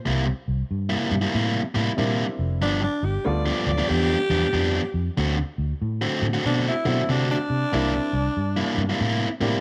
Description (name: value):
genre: electric blues shuffle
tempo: 94 BPM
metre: 4/4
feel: swing 63% on 8ths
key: unclear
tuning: A4 = 440 Hz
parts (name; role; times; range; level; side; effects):
- overdriven electric guitar; riff; 0.1-9.6 s; G2 to F#4; -27 LUFS; equal; none
- vintage muted fingered electric bass; bass; 0.1-9.6 s; F1 to C3; -28 LUFS; equal; none
- warm upright piano; accompaniment; 2.0-9.6 s; F#3 to Bb4; -31 LUFS; equal; none
- growling tenor saxophone; second line; 2.6-9.2 s; D4 to D5; -29 LUFS; equal; none
room: light reverb, studio ambience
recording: none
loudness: -24 LUFS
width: mono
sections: 0.0-9.6 A section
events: tenor saxophone solo 0.0-9.6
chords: 0.0 C7; 2.6 G7; 5.2 D7; 7.7 C7